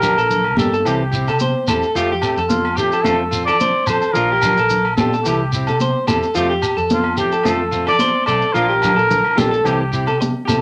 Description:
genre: highlife guitar band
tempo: 109 BPM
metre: 4/4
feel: swing 53% on 16ths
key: F major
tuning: A4 = 441 Hz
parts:
  - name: warm trumpet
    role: melody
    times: 0.0-10.5 s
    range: F4 to D5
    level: -21 LUFS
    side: equal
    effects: none
  - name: semi-hollow electric guitar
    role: accompaniment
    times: 0.0-10.6 s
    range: E3 to Bb4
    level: -26 LUFS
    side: equal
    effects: none
  - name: electric guitar at the edge of break-up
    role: arpeggios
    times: 0.0-10.6 s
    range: F4 to C5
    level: -22 LUFS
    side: equal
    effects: none
  - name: agogo bells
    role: percussion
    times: 0.0-10.6 s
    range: none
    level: -30 LUFS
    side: equal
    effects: none
  - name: congas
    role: percussion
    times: 0.0-10.6 s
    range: none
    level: -25 LUFS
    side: equal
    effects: none
  - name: shekere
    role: percussion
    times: 0.0-10.6 s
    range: none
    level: -29 LUFS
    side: equal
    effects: none
  - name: fingered electric bass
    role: bass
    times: 0.2-10.6 s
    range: Bb1 to F3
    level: -27 LUFS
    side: equal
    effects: none
room: wet studio ambience, RT60 0.5 s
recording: none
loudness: -17 LUFS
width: mono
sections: 0.0-10.6 A section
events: none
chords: 0.0 Bb; 0.8 C; 1.9 Fadd9; 3.0 F6; 4.1 Bb; 5.2 C; 6.3 Fadd9; 7.5 F6; 8.6 Bb; 9.7 C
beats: 0.30 0.85 1.40 | 1.95 2.50 3.05 3.60 | 4.15 4.70 5.25 5.80 | 6.35 6.90 7.45 8.00 | 8.55 9.10 9.65 10.20

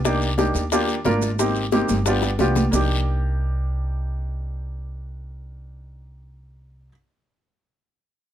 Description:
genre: Afro-Cuban jazz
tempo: 178 BPM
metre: 4/4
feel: straight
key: C minor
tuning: A4 = 440 Hz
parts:
  - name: warm upright piano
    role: accompaniment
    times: 0.0-6.9 s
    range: Bb3 to Bb4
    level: -22 LUFS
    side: equal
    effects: none
  - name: upright bass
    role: bass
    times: 0.0-6.9 s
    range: G1 to Eb2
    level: -25 LUFS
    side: equal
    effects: none
  - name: congas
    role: percussion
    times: 0.0-2.8 s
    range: none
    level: -28 LUFS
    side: right 1 dB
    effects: none
  - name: guiro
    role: percussion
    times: 0.0-2.8 s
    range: none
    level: -34 LUFS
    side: left 5 dB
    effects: none
  - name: bongos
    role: percussion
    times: 0.1-2.8 s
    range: none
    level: -28 LUFS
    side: left 8 dB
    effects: none
  - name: maracas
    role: percussion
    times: 0.1-2.8 s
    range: none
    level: -33 LUFS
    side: right 8 dB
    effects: none
room: light reverb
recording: none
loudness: -20 LUFS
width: side -11 dB against mid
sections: 0.0-2.7 A section; 2.7-5.4 B section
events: drum fill 2.2-2.7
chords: 0.0 Cm7; 0.7 Ebmaj7; 1.4 Abmaj7; 2.1 G7; 2.7 Cm7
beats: | 0.04 0.38 0.71 1.05 | 1.39 1.72 2.06 2.39 | 2.73 3.07 3.40 3.74 | 4.08 4.41 4.75 5.09

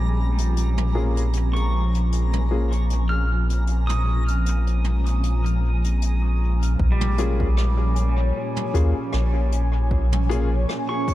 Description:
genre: ambient dub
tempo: 77 BPM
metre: 4/4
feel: swing 56% on 16ths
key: Bb dorian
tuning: A4 = 440 Hz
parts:
  - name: airy breathy pad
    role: sustained chords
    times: 0.0-11.1 s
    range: Bb2 to Ab5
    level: -28 LUFS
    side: equal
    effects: chorus, phaser
  - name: pedal steel guitar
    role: arpeggios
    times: 0.0-11.1 s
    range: G3 to F6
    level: -32 LUFS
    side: right 2 dB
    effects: dub echo
  - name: soft dub sub bass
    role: bass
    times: 0.0-10.7 s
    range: Bb1 to Eb2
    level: -20 LUFS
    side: equal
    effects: tube saturation
  - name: backwards swelling texture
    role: texture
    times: 0.0-6.8 s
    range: Ab3 to Bb5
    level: -37 LUFS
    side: equal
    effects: built-in reverb
  - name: jazz brush drum kit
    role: drums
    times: 0.4-11.1 s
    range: hi-hat, rim click, toms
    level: -34 LUFS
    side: equal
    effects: dub echo
  - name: warm upright piano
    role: stabs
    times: 0.9-10.5 s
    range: Bb3 to Ab4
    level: -30 LUFS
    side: left 4 dB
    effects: dub echo
  - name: electronic kick drum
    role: drums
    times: 6.8-11.1 s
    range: none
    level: -24 LUFS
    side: equal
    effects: overdrive
room: studio reverb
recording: none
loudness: -19 LUFS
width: side -15 dB against mid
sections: 0.0-6.8 A section; 6.8-11.1 B section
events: none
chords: 0.0 Bbm7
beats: | 0.56 1.34 2.12 2.90 | 3.68 4.46 5.24 6.01 | 6.79 7.57 8.35 9.13 | 9.91 10.69

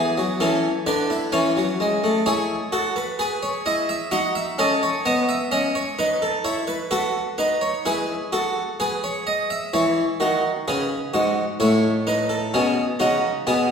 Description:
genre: classical, baroque-style 4-part fugue for harpsichord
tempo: 64 BPM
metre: 4/4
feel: straight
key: unclear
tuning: A4 = 441 Hz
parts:
  - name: harpsichord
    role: solo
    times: 0.0-13.7 s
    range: G#2 to F#5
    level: -20 LUFS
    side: equal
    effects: none
room: wet recital hall reverb, RT60 1.6 s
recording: recorded in a church or concert hall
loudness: -20 LUFS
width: side -6 dB against mid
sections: 0.0-9.7 A section; 9.7-13.7 B section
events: none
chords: 0.4 A; 2.3 E; 4.1 F#m7; 6.0 B7/D#; 7.9 E; 9.7 C#m; 11.6 F#m7/A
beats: 0.40 1.33 | 2.27 3.20 4.13 5.06 | 5.99 6.92 7.86 8.79 | 9.73 10.67 11.61 12.55 | 13.48

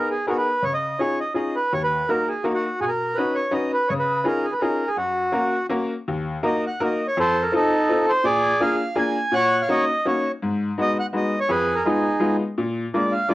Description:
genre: musette waltz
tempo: 166 BPM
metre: 3/4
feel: swing 54% on 8ths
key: F# major, Eb minor from 6.1 s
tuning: A4 = 437 Hz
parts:
  - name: accordion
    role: melody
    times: 0.0-13.3 s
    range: Eb4 to Ab5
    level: -21 LUFS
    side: right 1 dB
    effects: none
  - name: bright upright piano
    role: accompaniment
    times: 0.0-13.3 s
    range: D#2 to B4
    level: -24 LUFS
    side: left 2 dB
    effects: cassette tape
room: moderate studio reverb, RT60 0.7 s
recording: home recording on cassette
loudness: -20 LUFS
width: side -17 dB against mid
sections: 0.0-6.1 A section; 6.1-13.3 B section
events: none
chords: 0.0 G#madd9; 0.6 C#add9; 1.7 D#m; 2.8 Badd9; 3.9 C#add9; 5.0 F#; 6.1 Ebm; 7.2 F7; 8.2 Bb7; 9.3 Ebm7/Bb; 10.4 Abm7; 11.5 Fm7b5; 12.6 Bb7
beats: 0.27 | 0.63 0.99 1.36 | 1.72 2.09 2.45 | 2.82 3.18 3.54 | 3.90 4.26 4.62 | 4.98 5.35 5.71 | 6.08 6.44 6.81 | 7.17 7.53 7.89 | 8.25 8.61 8.97 | 9.33 9.69 10.05 | 10.41 10.77 11.13 | 11.49 11.85 12.21 | 12.57 12.93 13.29

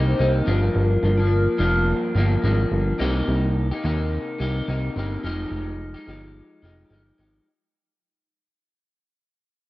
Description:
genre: indie pop, bedroom pop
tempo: 108 BPM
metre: 4/4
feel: swing 55% on 16ths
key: C minor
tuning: A4 = 440 Hz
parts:
  - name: hollow clarinet-like synth lead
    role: melody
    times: 0.0-1.6 s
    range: Bb4 to C5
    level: -28 LUFS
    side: left 1 dB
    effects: lush chorus, analog delay
  - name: electric guitar through a small old amp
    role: accompaniment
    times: 0.0-7.5 s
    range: G2 to G4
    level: -25 LUFS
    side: left 1 dB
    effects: lush chorus, warbly pitch drift
  - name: fat analog bass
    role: bass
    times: 0.0-7.4 s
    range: F1 to Eb2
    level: -22 LUFS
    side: equal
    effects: none
room: light reverb, digital ambience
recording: worn, warbling old tape, cassette tape, warbly pitch drift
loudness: -20 LUFS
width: side -18 dB against mid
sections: 0.0-3.0 A section; 3.0-7.5 B section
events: fade-out 3.0-7.5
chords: 0.5 Gm7; 3.0 Cm7; 5.2 Fm9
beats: 0.20 | 0.76 1.32 1.88 2.43 | 2.99 3.55 4.11 4.67 | 5.22 5.78 6.34 6.90

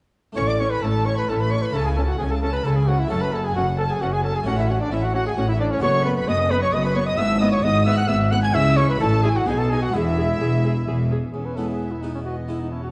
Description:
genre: classical, baroque-style concerto movement with solo episodes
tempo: 132 BPM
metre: 3/4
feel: straight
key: A major, E major from 5.8 s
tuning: A4 = 440 Hz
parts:
  - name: harpsichord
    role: accompaniment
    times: 0.3-12.9 s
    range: E2 to F#4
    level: -32 LUFS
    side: equal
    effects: none
  - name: mellow trumpet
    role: melody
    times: 0.4-12.9 s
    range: C#4 to G#5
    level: -27 LUFS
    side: equal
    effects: none
  - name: rich studio violin section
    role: melody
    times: 0.4-12.9 s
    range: C#5 to G#6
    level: -34 LUFS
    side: equal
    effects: none
  - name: rich chamber violin section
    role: second line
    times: 0.4-12.9 s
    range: C#5 to G#6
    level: -34 LUFS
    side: equal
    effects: none
  - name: rich chamber viola section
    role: accompaniment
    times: 0.4-12.9 s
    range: B3 to G#4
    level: -34 LUFS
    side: equal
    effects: none
  - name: rich chamber double bass section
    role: bass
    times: 0.4-12.9 s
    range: E1 to C#2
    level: -26 LUFS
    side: equal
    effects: none
  - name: rich studio cello section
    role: bass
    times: 0.4-12.9 s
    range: E2 to C#3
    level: -29 LUFS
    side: equal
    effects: none
room: moderate scoring stage reverb, RT60 1.8 s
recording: worn, warbling old tape, cassette tape, warbly pitch drift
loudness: -21 LUFS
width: mono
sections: 0.4-11.3 A section; 11.3-12.9 B section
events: none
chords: 0.4 A; 1.7 A/C#; 3.1 F#m; 4.5 F#m/A; 5.8 B5/F#; 7.2 E/G#; 8.6 C#m; 9.0 F#m9/A; 9.5 B; 9.9 E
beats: | 0.37 0.83 1.29 | 1.75 2.20 2.66 | 3.11 3.56 4.01 | 4.47 4.92 5.37 | 5.82 6.28 6.73 | 7.18 7.64 8.09 | 8.55 9.01 9.47 | 9.94 10.41 10.87 | 11.34 11.80 12.25 | 12.71

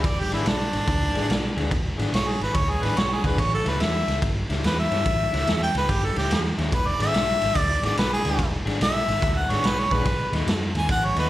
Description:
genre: electric blues shuffle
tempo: 144 BPM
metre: 4/4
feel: swing 66% on 8ths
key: E mixolydian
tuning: A4 = 440 Hz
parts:
  - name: warm harmonica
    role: melody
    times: 0.0-11.3 s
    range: D4 to G#5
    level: -25 LUFS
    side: equal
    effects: slapback echo
  - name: electric guitar through a small old amp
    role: riff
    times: 0.0-11.3 s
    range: A2 to G#4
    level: -33 LUFS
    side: left 5 dB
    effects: slapback echo
  - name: vintage muted fingered electric bass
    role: bass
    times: 0.0-11.3 s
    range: E1 to G2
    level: -27 LUFS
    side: equal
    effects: none
  - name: raw garage drum kit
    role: drums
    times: 0.0-11.2 s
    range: kick drum, ride cymbal, snare drum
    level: -25 LUFS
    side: equal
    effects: none
room: light reverb, studio reverb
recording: live gig heard through the venue's PA, club reverb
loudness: -21 LUFS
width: side -14 dB against mid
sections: 0.0-11.3 A section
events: harmonica solo 0.0-11.3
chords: 0.0 E7; 3.4 A7; 6.7 E7; 10.1 B7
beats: | 0.04 0.46 0.88 1.30 | 1.72 2.13 2.55 2.97 | 3.38 3.80 4.22 4.64 | 5.05 5.47 5.89 6.31 | 6.72 7.14 7.56 7.98 | 8.39 8.81 9.23 9.65 | 10.06 10.48 10.90

